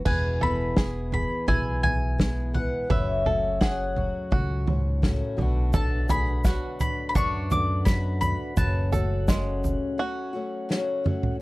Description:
indie folk with a building arrangement; 85 BPM; 4/4; straight; A4 = 440 Hz
fingerpicked steel-string acoustic guitar; accompaniment; 0.0-8.6 s; E2 to G#4; -34 LUFS; equal
mandolin; melody; 0.1-10.7 s; E5 to D6; -29 LUFS; left 2 dB
picked old ladder-braced acoustic guitar; accompaniment; 0.1-11.4 s; F#2 to G#4; -33 LUFS; left 4 dB
bluegrass banjo; arpeggios; 0.1-10.7 s; G#3 to B4; -35 LUFS; right 4 dB
upright bass; bass; 0.1-9.7 s; E1 to F#2; -27 LUFS; equal
unplugged drum kit; drums; 0.1-11.4 s; crash cymbal, kick drum, snare drum, toms; -26 LUFS; equal
mellow tonewheel organ; sustained chords; 5.7-11.4 s; C#4 to F#5; -37 LUFS; right 1 dB; slow rotary speaker
egg shaker; percussion; 5.7-9.8 s; -45 LUFS; right 4 dB
little or no reverb; dry, close 1970s-style studio recording; -23 LUFS; side -20 dB against mid
0.1-11.4 A section
break 10.0-11.4; drum fill 10.7-11.4
0.1 E; 2.9 F#m; 5.4 Bm7; 8.6 F#m
| 0.06 0.77 1.48 2.19 | 2.90 3.61 4.32 5.03 | 5.74 6.45 7.16 7.87 | 8.57 9.28 9.99 10.70 | 11.41

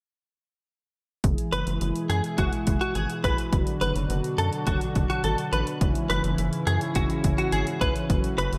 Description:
synth-pop; 105 BPM; 4/4; straight; A4 = 443 Hz
chorused pulse-width pad; sustained chords; 1.2-8.6 s; G#2 to G#4; -31 LUFS; equal
rubbery square bass; bass; 1.2-8.6 s; F#1 to F#2; -30 LUFS; equal
punchy analog drum machine; drums; 1.2-8.6 s; hi-hat, kick drum; -30 LUFS; equal
direct-recorded clean electric guitar; second line; 1.5-8.5 s; F#4 to B4; -31 LUFS; equal; ensemble chorus, delay
moderate lush hall reverb, RT60 1.9 s, digital ambience; bright 1980s-style digital production; -25 LUFS; mono
1.2-8.6 A section
1.2 E/F#; 3.5 Bm/F#; 5.8 C#m/F#
| 1.24 1.81 2.38 2.95 | 3.52 4.10 4.67 5.24 | 5.81 6.38 6.95 7.53 | 8.10

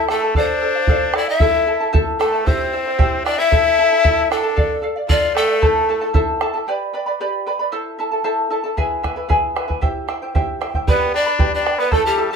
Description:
andean folk, Andean ensemble; 114 BPM; 2/4; straight; A4 = 442 Hz
breathy mellow pan flute; melody; 0.0-6.1, 10.9-12.4 s; G4 to E5; -19 LUFS; left 2 dB; plate reverb
trumpet with straight mute; second line; 0.0-6.1, 10.9-12.4 s; G3 to F4; -22 LUFS; left 4 dB
charango; accompaniment; 0.0-12.4 s; E4 to B5; -20 LUFS; equal
bombo; percussion; 0.1-6.5, 8.8-12.0 s; -20 LUFS; right 1 dB
moderate studio reverb, RT60 0.6 s; -16 LUFS; side -6 dB against mid
0.0-6.7 A section; 6.7-10.9 B section; 10.9-12.4 C section
0.4 Dm; 1.4 Am; 2.5 C; 3.5 Am; 4.6 Dm; 5.6 Am; 6.7 G; 7.7 Am; 8.8 E; 9.8 C; 10.9 G
| 0.35 0.88 | 1.41 1.94 | 2.46 2.99 | 3.52 4.04 | 4.57 5.10 | 5.62 6.15 | 6.67 7.20 | 7.73 8.25 | 8.78 9.30 | 9.83 10.35 | 10.88 11.40 | 11.92

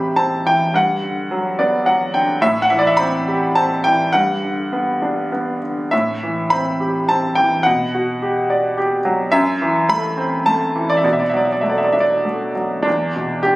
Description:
classical, lyrical solo piano; 96-110 BPM; 3/4; rubato; A4 = 441 Hz
bright baby grand piano; solo; 0.0-13.6 s; E2 to B5; -15 LUFS; equal
light reverb; recorded on a phone in the room, club reverb; -15 LUFS; side -19 dB against mid
0.0-12.9 A section
grand piano fill 1.3-2.4
0.0 Am9; 0.7 Gmaj7; 2.4 Am9; 4.1 Gmaj7; 5.9 Am9; 7.7 Gmaj7/B; 9.3 F#m7b5; 11.0 Bm7; 12.9 Em7
0.16 | 0.74 1.30 1.86 | 2.42 2.98 3.56 | 4.14 4.72 5.32 | 5.92 6.52 7.09 | 7.66 8.21 8.76 | 9.32 9.88 10.46 | 11.04 11.63 12.25 | 12.87 13.46

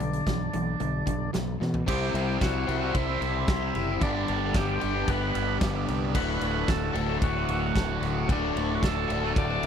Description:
classic rock; 112 BPM; 4/4; straight; A4 = 441 Hz
overdriven tonewheel organ; melody; 0.0-9.7 s; D4 to D5; -32 LUFS; equal; slow rotary speaker
cranked stack guitar; riff; 0.0-9.7 s; D2 to C5; -32 LUFS; right 12 dB; overdrive, phaser
overdriven semi-hollow guitar; riff; 0.0-9.7 s; D2 to C5; -31 LUFS; left 12 dB
growling fingered electric bass; bass; 0.0-9.7 s; D1 to B2; -32 LUFS; equal; overdrive
huge arena drum kit; drums; 0.0-9.7 s; crash cymbal, hi-hat, kick drum, ride cymbal, snare drum, toms; -31 LUFS; equal
bright tonewheel organ; sustained chords; 1.9-9.7 s; F#3 to C5; -42 LUFS; equal
little or no reverb; dry, close 1970s-style studio recording; -24 LUFS; side -8 dB against mid
0.0-1.9 A section; 1.9-9.7 B section
drum fill 1.6
0.0 G/B; 1.9 C; 4.0 G; 6.1 D
0.26 0.80 1.33 | 1.87 2.41 2.94 3.48 | 4.01 4.54 5.08 5.61 | 6.15 6.68 7.22 7.75 | 8.29 8.82 9.36

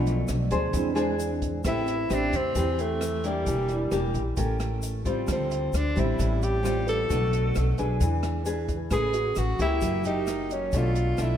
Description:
bossa nova; 132 BPM; 4/4; straight; A minor; A4 = 440 Hz
dark grand piano; accompaniment; 0.0-10.0 s; F3 to D5; -35 LUFS; right 3 dB; ensemble chorus
nylon-string guitar; accompaniment; 0.0-11.4 s; A2 to C5; -29 LUFS; equal; lush chorus
upright bass; bass; 0.0-11.4 s; E1 to E2; -28 LUFS; equal
open jazz drum kit; drums; 0.1-11.3 s; hi-hat, kick drum, rim click; -34 LUFS; equal
egg shaker; percussion; 0.1-11.4 s; -46 LUFS; left 8 dB
breathy tenor saxophone; melody; 1.7-11.4 s; G3 to A4; -28 LUFS; equal; tape echo
moderate lush hall reverb, RT60 1.6 s, small room ambience; dreamy mix soaked in reverb; -24 LUFS; side -9 dB against mid
0.0-1.6 A section; 1.6-11.4 B section
grand piano solo 0.0-1.6
0.0 Bm7b5; 0.7 Eaug7; 1.6 Am9; 3.5 Em7b5; 4.4 A7b9; 5.3 Dm11; 7.1 Bm7; 8.0 E7; 8.9 Amaj9; 9.8 F#7b9; 10.7 Bm7b5
0.29 0.74 1.20 | 1.65 2.10 2.56 3.01 | 3.47 3.92 4.37 4.83 | 5.28 5.74 6.19 6.65 | 7.10 7.55 8.01 8.46 | 8.91 9.37 9.82 10.28 | 10.73 11.18

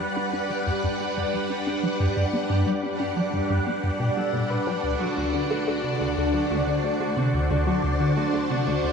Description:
ambient, sequencer-driven space music; 90 BPM; 4/4; straight; G major; A4 = 440 Hz
phased string machine; sustained chords; 0.0-8.9 s; D3 to F#5; -26 LUFS; equal; ensemble chorus, phaser
concert harp; arpeggios; 0.0-8.9 s; F#4 to G5; -33 LUFS; left 2 dB; auto-pan, ping-pong delay
resonant blip pluck; riff; 0.0-8.9 s; D2 to D4; -26 LUFS; equal; phaser, ping-pong delay
bubbling stepped-filter texture; texture; 1.7-8.9 s; D5; -36 LUFS; right 2 dB; chorus, built-in reverb
wet shimmer reverb, RT60 7.3 s; worn, warbling old tape, cassette tape, warbly pitch drift; -22 LUFS; side -6 dB against mid
0.0-8.9 A section
fade-in on harp 0.0-8.9; fade-in on synth texture 0.0-8.9; filter sweep on synth arpeggio sound 0.0-8.9
0.0 Gmaj7; 4.8 D7
0.17 0.83 1.50 | 2.17 2.83 3.50 4.17 | 4.83 5.50 6.17 6.83 | 7.50 8.17 8.84

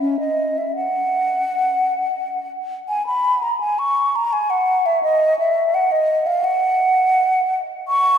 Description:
classical, baroque-style fantasia for unaccompanied flute; 84 BPM; 4/4; rubato; A4 = 441 Hz
mellow hollow concert flute; solo; 0.0-8.2 s; C#4 to C#6; -16 LUFS; equal
wet cathedral reverb, RT60 5.0 s; minimal, uncompressed stereo recording; -17 LUFS; side -8 dB against mid
0.0-8.2 A section
| 0.01 0.76 1.47 2.19 | 2.90 3.61 4.33 5.04 | 5.74 6.45 7.17 7.89

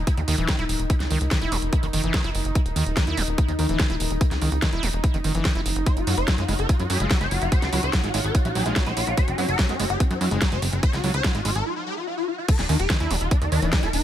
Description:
psychedelic trance; 145 BPM; 4/4; straight; Eb phrygian; A4 = 440 Hz
evolving wavetable pad; sustained chords; 0.0-14.0 s; Eb4; -33 LUFS; equal; chorus, built-in reverb, sidechain pumping
plucky analog bass; bass; 0.0-14.0 s; Eb1 to Gb2; -25 LUFS; equal
airy breathy pad; texture; 0.3-14.0 s; Eb4 to Gb5; -36 LUFS; left 1 dB; chorus, phaser, sidechain pumping
big-room dance drum kit; drums; 0.1-14.0 s; crash cymbal, hi-hat, snare drum; -29 LUFS; right 1 dB
electronic kick drum; drums; 0.1-13.8 s; -21 LUFS; equal
screaming distorted acid line; riff; 0.2-13.9 s; Eb3 to Fb4; -29 LUFS; right 2 dB; distortion, chorus, auto-pan, sidechain pumping, tape echo
swarming rave lead; melody; 5.9-14.0 s; Db4 to Db5; -28 LUFS; left 1 dB; chorus, phaser, sidechain pumping, tape echo
little or no reverb; -20 LUFS; side -11 dB against mid
0.0-12.5 A section; 12.5-14.0 B section
fade-in on analog synth pad 0.0-12.5; break 11.7-12.5; drop 12.5-14.0
0.0 Eb5; 5.9 Gb5; 12.5 Eb5
0.07 0.48 | 0.90 1.31 1.73 2.14 | 2.55 2.97 3.38 3.79 | 4.21 4.62 5.04 5.45 | 5.86 6.28 6.69 7.11 | 7.52 7.93 8.35 8.76 | 9.18 9.59 10.00 10.42 | 10.83 11.24 11.66 12.07 | 12.48 12.90 13.31 13.73

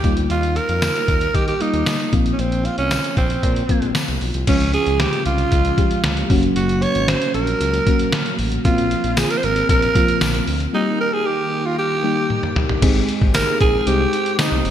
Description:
1980s-style pop; 115 BPM; 4/4; straight; Ab major; A4 = 439 Hz
raspy alto saxophone; melody; 0.0-14.7 s; C4 to Db5; -21 LUFS; right 2 dB; ping-pong delay
FM electric piano with soft pad layer; accompaniment; 0.0-14.7 s; F3 to C5; -23 LUFS; left 1 dB; chorus
smooth synth bass; bass; 0.0-14.7 s; Gb1 to Eb3; -23 LUFS; equal
trip hop sampler-style drum kit; drums; 0.0-14.7 s; crash cymbal, hi-hat, kick drum, snare drum, tambourine, toms; -20 LUFS; equal; gated reverb
tambourine; percussion; 0.8-4.1, 9.2-14.5 s; -37 LUFS; left 2 dB
string machine, cellos; sustained chords; 4.5-14.7 s; Db3 to G5; -28 LUFS; equal; ensemble chorus
moderate lush hall reverb, RT60 1.8 s, digital ambience; bright 1980s-style digital production; -16 LUFS; side -10 dB against mid
0.0-4.5 A section; 4.5-12.8 B section; 12.8-14.7 C section
break 10.7-12.8; drum fill 12.3-12.8
0.0 Ebadd9; 2.1 Bbsus2; 4.5 Db; 6.3 Gb; 8.7 Bbsus2; 10.7 Eb; 12.8 Abmaj7
| 0.30 0.82 1.35 1.87 | 2.39 2.91 3.43 3.95 | 4.48 5.00 5.52 6.04 | 6.56 7.08 7.61 8.13 | 8.65 9.17 9.69 10.21 | 10.74 11.26 11.78 12.30 | 12.82 13.35 13.87 14.39

